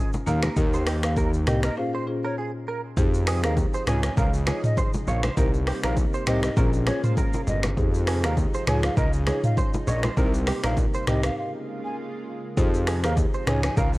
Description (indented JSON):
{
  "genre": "afrobeats",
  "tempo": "100 BPM",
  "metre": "4/4",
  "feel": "swing 55% on 16ths",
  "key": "unclear",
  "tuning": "A4 = 440 Hz",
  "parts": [
    { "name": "direct-recorded clean electric guitar", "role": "riff", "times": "0.0-13.9 s", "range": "G4 to Db5", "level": "-33 LUFS", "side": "right 4 dB", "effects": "ensemble chorus, tape echo" },
    { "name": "afro-pop drum kit", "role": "drums", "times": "0.1-14.0 s", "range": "finger snaps, hi-hat, kick drum, rim click, shaker, toms", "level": "-25 LUFS", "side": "equal", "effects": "overdrive" },
    { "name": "bongos and congas", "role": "percussion", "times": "0.1-13.9 s", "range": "none", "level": "-32 LUFS", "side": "left 1 dB", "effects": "none" },
    { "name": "mellow hollow jazz flute", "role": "melody", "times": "0.3-13.9 s", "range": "Db5 to Ab5", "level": "-34 LUFS", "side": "equal", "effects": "tape echo" },
    { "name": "marimba with medium mallets", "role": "accompaniment", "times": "0.3-13.7 s", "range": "Bb2 to Db5", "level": "-31 LUFS", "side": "left 2 dB", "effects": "none" },
    { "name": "fat analog bass", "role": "bass", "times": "0.3-14.0 s", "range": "G1 to F2", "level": "-25 LUFS", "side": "equal", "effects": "none" },
    { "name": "lush unison pad", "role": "sustained chords", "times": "3.0-14.0 s", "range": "C3 to F4", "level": "-35 LUFS", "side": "right 1 dB", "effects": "none" }
  ],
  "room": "little or no reverb",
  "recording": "worn, warbling old tape, cassette tape, warbly pitch drift",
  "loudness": "-21 LUFS",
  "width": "side -20 dB against mid",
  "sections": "0.0-3.0 A section; 3.0-14.0 B section",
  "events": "break 1.8-3.0, 11.4-12.6",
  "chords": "0.3 Eb; 1.8 Bbm7; 3.0 Fm7; 3.9 Dbadd9; 5.4 Cm7; 6.6 Bbm7; 7.8 Fm7; 8.7 Dbadd9; 10.2 Cm7; 11.4 Bbm7; 12.6 Fm7; 13.5 Dbadd9"
}